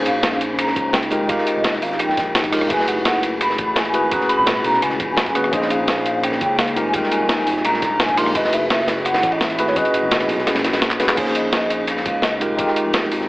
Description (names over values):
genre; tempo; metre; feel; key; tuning
liquid drum and bass; 170 BPM; 4/4; straight; unclear; A4 = 441 Hz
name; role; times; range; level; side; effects
mellow tine electric piano; accompaniment; 0.0-13.3 s; Bb2 to C5; -22 LUFS; equal; medium stereo tremolo
glassy FM pad; sustained chords; 0.0-11.2 s; Ab3 to Cb6; -28 LUFS; left 1 dB; ensemble chorus, built-in reverb, phaser, sidechain pumping
smooth synth bass; bass; 0.0-13.3 s; Eb1 to Db2; -29 LUFS; equal; none
hollow clarinet-like synth lead; melody; 0.1-13.1 s; Db5 to C6; -22 LUFS; equal; ensemble chorus, digital delay
breakbeat sampler-style drum kit; drums; 0.1-13.2 s; crash cymbal, handclaps, hi-hat, rim click, snare drum; -22 LUFS; equal; none
crunchy breakbeat drum kit; drums; 0.1-13.3 s; hi-hat, ride cymbal, snare drum; -24 LUFS; equal; high-pass filter on cymbals, high-pass filter on hats, high-pass filter on snare, high-pass filter on room
electronic kick drum; drums; 0.8-12.7 s; none; -32 LUFS; equal; none
room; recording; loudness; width
light reverb, small room reverb; AM radio sound; -16 LUFS; side -20 dB against mid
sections
0.0-11.2 A section; 11.2-13.3 A section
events
drop 0.0-11.2, 11.2-13.3; kick drops out 10.5-11.2; drum fill 10.9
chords
0.0 Bbm11; 1.1 Fm11; 2.7 Gbm11; 4.1 Abm11; 5.5 Bbm11; 6.8 Fm11; 8.4 Gbm11; 9.8 Abm11; 11.2 Bbm11; 12.4 Fm11